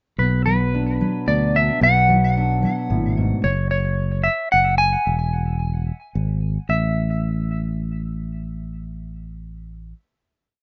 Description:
indie folk with a building arrangement; 111 BPM; 3/4; straight; A major; A4 = 440 Hz
clean electric guitar; melody; 0.2-9.9 s; B4 to G#5; -23 LUFS; equal; tremolo, tape echo
fingerpicked steel-string acoustic guitar; accompaniment; 0.2-3.4 s; G#2 to D4; -24 LUFS; equal
fingered electric bass; bass; 0.2-9.9 s; E1 to D2; -24 LUFS; equal
light reverb; rough home demo mix, nothing above 7.5 kHz; -20 LUFS; mono
0.2-6.7 pre-chorus; 6.7-9.9 final chord
0.2 Bm; 3.5 F#5; 5.1 E; 6.7 A5

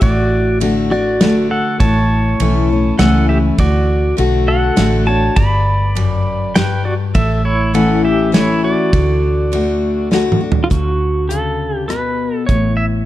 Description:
honky-tonk and classic country; 101 BPM; 3/4; straight; D major; A4 = 440 Hz
pedal steel guitar; melody; 0.0-12.8 s; E4 to B5; -18 LUFS; right 1 dB
picked steel-string acoustic guitar; accompaniment; 0.0-13.1 s; F#2 to F#4; -17 LUFS; left 3 dB
vintage muted fingered electric bass; bass; 0.0-13.1 s; G1 to D2; -18 LUFS; right 1 dB
natural country drum kit; drums; 0.0-12.6 s; hi-hat, kick drum, ride cymbal, rim click, snare drum, toms; -16 LUFS; right 1 dB
light reverb; dark, warm production; -12 LUFS; side -14 dB against mid
0.0-10.7 A section; 10.7-13.1 B section
drum fill 10.1-10.7
0.0 D; 1.8 A; 3.6 D; 5.4 G; 7.2 A; 8.9 D; 12.5 A

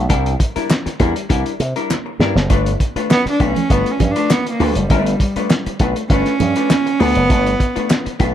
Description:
funk; 100 BPM; 4/4; straight; G mixolydian; A4 = 439 Hz
slap bass with an envelope filter; bass; 0.0-8.3 s; F#1 to C3; -18 LUFS; equal
vintage hollow-body jazz guitar; accompaniment; 0.1-8.3 s; G3 to B4; -22 LUFS; left 5 dB
cloth-damped thuddy drum kit; drums; 0.1-8.3 s; hi-hat, kick drum, snare drum; -18 LUFS; equal
congas; percussion; 0.1-8.0 s; -26 LUFS; right 8 dB
group handclap; percussion; 0.7-8.0 s; -30 LUFS; left 2 dB
rich cello; melody; 3.1-7.9 s; G3 to D4; -18 LUFS; right 2 dB
little or no reverb; dark, warm production; -14 LUFS; side -10 dB against mid
0.0-2.5 A section; 2.5-8.3 B section
drum fill 1.9-2.5; cello solo 2.5-8.3
0.1 C9; 2.5 G9

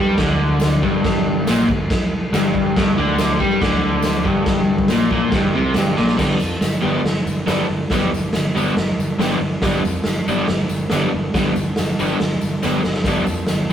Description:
garage rock duo or trio; 140 BPM; 4/4; straight; G mixolydian; A4 = 440 Hz
crunchy overdriven guitar; riff; 0.0-13.7 s; G2 to D4; -19 LUFS; left 1 dB
fuzz picked electric bass; bass; 0.0-13.7 s; G1 to G2; -24 LUFS; equal; overdrive
raw garage drum kit; drums; 0.2-13.6 s; crash cymbal, hi-hat, kick drum, snare drum; -20 LUFS; equal
tambourine; percussion; 0.6-13.7 s; -38 LUFS; left 4 dB
moderate stone room reverb, RT60 1.1 s; rough rehearsal-room recording, warm saturation; -16 LUFS; side -9 dB against mid
0.0-6.2 A section; 6.2-13.7 B section
drum fill 6.0, 12.6-13.1
0.0 G5; 6.2 G

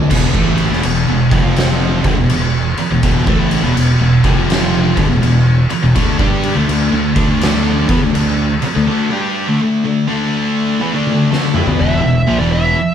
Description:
stoner and doom metal; 82 BPM; 4/4; swing 65% on 8ths; E minor; A4 = 440 Hz
fuzz guitar; riff; 0.0-12.8 s; E2 to G4; -18 LUFS; left 5 dB; distortion
thick fuzz guitar; riff; 0.0-12.7 s; E2 to G4; -18 LUFS; right 6 dB; distortion
growling fingered electric bass; bass; 0.0-12.7 s; E1 to G2; -19 LUFS; right 1 dB; overdrive
heavy high-gain guitar; riff; 0.1-12.8 s; E2 to G4; -21 LUFS; right 1 dB; distortion
oversized low-tuned drum kit; drums; 0.1-11.8 s; crash cymbal, kick drum, snare drum, toms; -17 LUFS; left 1 dB
fuzz lead guitar; melody; 11.8-12.9 s; D5 to E5; -18 LUFS; right 1 dB; wah, distortion
moderate stone room reverb, RT60 1.2 s; band playing live in one room; -12 LUFS; side -9 dB against mid
0.1-11.8 A section; 11.8-12.9 B section
drum fill 11.1-11.8
0.1 E5; 1.2 F5; 1.9 Em; 4.1 F5; 4.9 Em; 6.0 D5; 11.8 E5

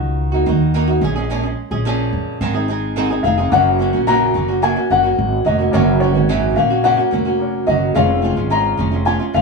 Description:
acoustic pop; 108 BPM; 4/4; straight; A4 = 440 Hz
flamenco guitar; accompaniment; 0.0-9.4 s; Gb2 to Ab4; -19 LUFS; right 3 dB
upright bass; bass; 0.0-9.4 s; F1 to F2; -19 LUFS; right 1 dB
dark upright piano; melody; 3.2-9.4 s; Db5 to Bb5; -17 LUFS; left 6 dB
clear grand piano; accompaniment; 3.5-9.4 s; Ab3 to Db5; -26 LUFS; left 4 dB
moderate studio reverb, RT60 0.8 s; band playing live in one room; -14 LUFS; side -3 dB against mid
0.0-3.5 A section; 3.5-9.4 B section
0.0 Ebm; 1.0 Bbm7; 2.4 Ab; 3.5 Gb; 8.0 Db/F

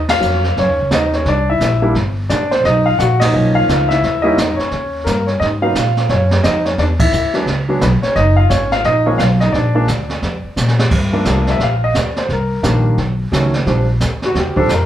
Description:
jazz piano trio; 174 BPM; 4/4; swing 62% on 8ths; Eb minor, G minor from 10.9 s; A4 = 440 Hz
upright bass; bass; 0.0-14.9 s; Gb1 to Bb2; -17 LUFS; equal
warm upright piano; melody; 0.1-14.9 s; Eb3 to F#5; -16 LUFS; equal
jazz brush drum kit; drums; 0.1-14.9 s; brushed snare drum, crash cymbal, hi-hat, kick drum, ride cymbal, snare drum; -20 LUFS; right 2 dB
wet studio reverb, RT60 0.7 s; heard from further back in the room; -13 LUFS; side -11 dB against mid
0.0-10.9 A section; 10.9-14.9 B section
band accent 0.1, 3.2, 7.0; drum fill 10.6-10.9; upright piano solo 10.9-14.9
0.0 Eb7sus2; 1.3 C9; 2.6 Bmaj9#11; 4.0 Eb7b9; 5.4 Ab7sus2; 6.8 E7(no3); 8.2 Gbmaj9; 9.5 Bb; 10.9 Gm9; 12.3 Cm9; 13.0 B9; 13.7 Bb6

